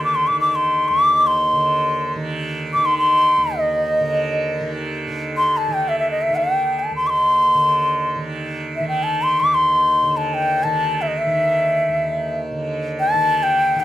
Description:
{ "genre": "indian classical, Hindustani", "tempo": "free time", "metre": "none", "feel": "none", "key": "Eb raga marwa", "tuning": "A4 = 440 Hz", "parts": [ { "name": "bansuri", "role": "melody", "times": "0.0-13.8 s", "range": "Eb5 to D6", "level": "-16 LUFS", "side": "left 1 dB", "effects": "none" }, { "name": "tanpura", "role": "drone", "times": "0.0-13.8 s", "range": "Eb2 to Eb3", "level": "-25 LUFS", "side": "right 2 dB", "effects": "none" } ], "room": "light reverb", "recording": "close, detailed microphones", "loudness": "-16 LUFS", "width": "side -14 dB against mid", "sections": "0.0-5.1 A section; 5.1-13.8 A section", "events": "none", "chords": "none" }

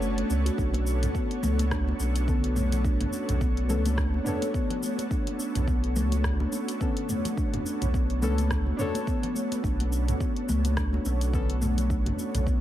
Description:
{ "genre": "organic downtempo", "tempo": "106 BPM", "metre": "4/4", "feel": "swing 57% on 16ths", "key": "B minor", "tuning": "A4 = 440 Hz", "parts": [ { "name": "deep mellow chord stab", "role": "accompaniment", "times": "0.0-11.5 s", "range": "D3 to C#5", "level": "-36 LUFS", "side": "left 2 dB", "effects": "chorus, sidechain pumping, tape echo" }, { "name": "ethereal airy pad", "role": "sustained chords", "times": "0.0-12.6 s", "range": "B3 to C#5", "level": "-35 LUFS", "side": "right 1 dB", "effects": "ensemble chorus, built-in reverb, sidechain pumping" }, { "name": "steel tongue drum", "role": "arpeggios", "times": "0.0-12.6 s", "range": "A3 to F#4", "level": "-31 LUFS", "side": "left 1 dB", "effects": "tape echo" }, { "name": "warm sub bass", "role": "bass", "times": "0.0-12.6 s", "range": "F#1 to C#2", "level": "-26 LUFS", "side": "equal", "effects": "none" }, { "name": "deep house drum kit", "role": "drums", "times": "0.0-12.6 s", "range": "cabasa, hi-hat, rim click, toms", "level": "-35 LUFS", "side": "equal", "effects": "none" }, { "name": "electronic kick drum", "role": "drums", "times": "0.6-12.6 s", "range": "none", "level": "-30 LUFS", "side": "equal", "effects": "none" }, { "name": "congas", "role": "percussion", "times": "0.7-12.2 s", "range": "none", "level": "-38 LUFS", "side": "left 2 dB", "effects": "none" } ], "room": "light reverb", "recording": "none", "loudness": "-24 LUFS", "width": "side -12 dB against mid", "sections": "0.0-12.6 A section", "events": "break 0.0-0.6", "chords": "0.0 Bm9" }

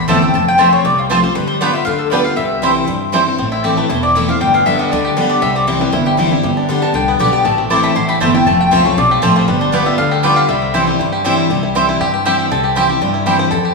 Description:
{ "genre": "bluegrass", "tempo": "237 BPM", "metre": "4/4", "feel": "straight", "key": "C major", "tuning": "A4 = 441 Hz", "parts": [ { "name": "mandolin", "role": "melody", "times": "0.0-10.8 s", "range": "F4 to D6", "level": "-16 LUFS", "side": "left 3 dB", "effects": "none" }, { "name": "picked steel-string acoustic guitar", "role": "accompaniment", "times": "0.0-13.7 s", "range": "E2 to G4", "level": "-17 LUFS", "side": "left 3 dB", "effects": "none" }, { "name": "upright bass", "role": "bass", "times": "0.0-13.7 s", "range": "E1 to G2", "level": "-21 LUFS", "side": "right 1 dB", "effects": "none" }, { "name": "bluegrass banjo", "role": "melody", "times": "0.1-13.7 s", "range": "D3 to C5", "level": "-19 LUFS", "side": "right 1 dB", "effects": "none" }, { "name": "mandolin", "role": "stabs", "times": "0.1-3.2, 7.7-13.4 s", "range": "A3 to A5", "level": "-18 LUFS", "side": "right 4 dB", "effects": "none" } ], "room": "wet scoring stage reverb, RT60 2.1 s", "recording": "recorded in a church or concert hall", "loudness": "-12 LUFS", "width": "side -2 dB against mid", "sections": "0.0-3.4 A section; 3.4-11.5 A section; 11.5-13.7 B section", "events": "five-string banjo solo 11.5-13.7", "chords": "0.3 F; 1.4 G7; 2.4 C; 3.4 Am; 4.4 G; 5.4 C; 6.4 G; 7.5 Am; 8.5 F; 9.5 G7; 10.5 C" }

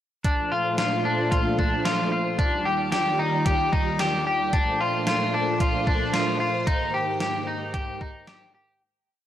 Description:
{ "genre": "dream pop", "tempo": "112 BPM", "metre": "4/4", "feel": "straight", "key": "Bb major", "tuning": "A4 = 437 Hz", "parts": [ { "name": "electric guitar at the edge of break-up", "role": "arpeggios", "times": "0.2-8.8 s", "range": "D4 to G4", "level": "-24 LUFS", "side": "left 2 dB", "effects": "lush chorus, analog delay" }, { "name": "gated 80s digital drum machine", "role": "drums", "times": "0.2-8.4 s", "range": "hi-hat, kick drum, snare drum", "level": "-27 LUFS", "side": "equal", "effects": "gated reverb, gated reverb snare, overdrive" }, { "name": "string machine, violins", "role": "sustained chords", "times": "0.3-8.8 s", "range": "Eb2 to D5", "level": "-27 LUFS", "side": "right 1 dB", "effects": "ensemble chorus" } ], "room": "little or no reverb", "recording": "dry, gritty hardware recording, cassette tape", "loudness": "-22 LUFS", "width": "side -11 dB against mid", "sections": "0.2-8.8 A section", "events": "fade-out 6.7-8.8", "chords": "0.2 Bbmaj7; 2.4 Ebmaj7; 4.5 Bbmaj7; 6.7 Abmaj9" }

